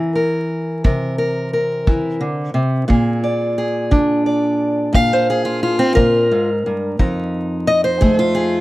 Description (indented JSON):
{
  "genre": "acoustic country blues, solo or duo",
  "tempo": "58 BPM (dotted quarters)",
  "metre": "12/8",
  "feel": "straight",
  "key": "unclear",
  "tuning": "A4 = 440 Hz",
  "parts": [
    { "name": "fingerpicked steel-string acoustic guitar", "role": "melody", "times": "0.0-8.6 s", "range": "F2 to F5", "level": "-16 LUFS", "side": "equal", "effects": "none" },
    { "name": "kick drum", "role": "drums", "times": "0.8-8.2 s", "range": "none", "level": "-16 LUFS", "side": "equal", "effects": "none" }
  ],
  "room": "little or no reverb",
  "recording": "vinyl crackle",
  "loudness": "-15 LUFS",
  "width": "side -17 dB against mid",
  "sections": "0.0-8.6 A section",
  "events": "none",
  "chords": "0.0 C7; 2.9 Bb7; 7.0 F7",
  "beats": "0.83 1.86 | 2.88 3.91 4.94 5.96 | 6.99 8.02"
}